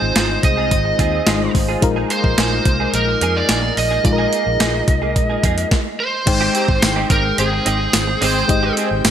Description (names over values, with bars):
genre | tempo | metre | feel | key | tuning
1980s-style pop | 108 BPM | 4/4 | straight | unclear | A4 = 440 Hz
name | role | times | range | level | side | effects
lead guitar through a small cranked amp | melody | 0.0-8.7 s | Ab4 to Eb5 | -20 LUFS | right 3 dB | overdrive, digital delay
FM electric piano with tremolo | accompaniment | 0.0-9.1 s | Ab3 to G5 | -23 LUFS | left 5 dB | none
lush unison pad | sustained chords | 0.0-9.1 s | Ab3 to G5 | -27 LUFS | equal | chorus
direct-recorded clean electric guitar | riff | 0.0-9.1 s | Bb3 to Ab4 | -26 LUFS | right 6 dB | ensemble chorus, digital delay
vintage muted fingered electric bass | bass | 0.0-9.1 s | Ab1 to F2 | -22 LUFS | equal | none
clean 12-bit digital drum machine | drums | 0.2-9.1 s | crash cymbal, hi-hat, kick drum, snare drum, tambourine | -18 LUFS | equal | overdrive
analog synth brass | stabs | 6.5-8.9 s | C4 to C5 | -25 LUFS | equal | chorus
room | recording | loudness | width
moderate lush hall reverb, RT60 1.9 s, digital ambience | bright 1980s-style digital production | -14 LUFS | side -9 dB against mid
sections
0.0-6.3 A section; 6.3-9.1 B section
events
none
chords
0.0 Ab6; 1.8 Bb7sus4; 6.3 Abmaj7